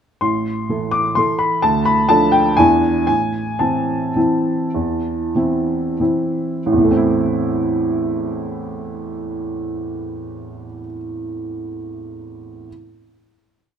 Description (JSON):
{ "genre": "classical, piano waltz", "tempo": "88-135 BPM", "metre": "3/4", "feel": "rubato", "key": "A minor", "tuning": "A4 = 440 Hz", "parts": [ { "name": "warm baby grand piano", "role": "solo", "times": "0.2-12.7 s", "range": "A1 to D6", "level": "-17 LUFS", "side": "equal", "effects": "none" } ], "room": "moderate recital hall reverb, RT60 1.5 s", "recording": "close, detailed microphones", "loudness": "-16 LUFS", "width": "side -8 dB against mid", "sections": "0.2-6.7 A section; 6.7-10.6 final chord", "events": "slowing down 2.3-6.7", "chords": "0.2 Am; 1.6 Dm; 2.6 E7; 3.1 Am" }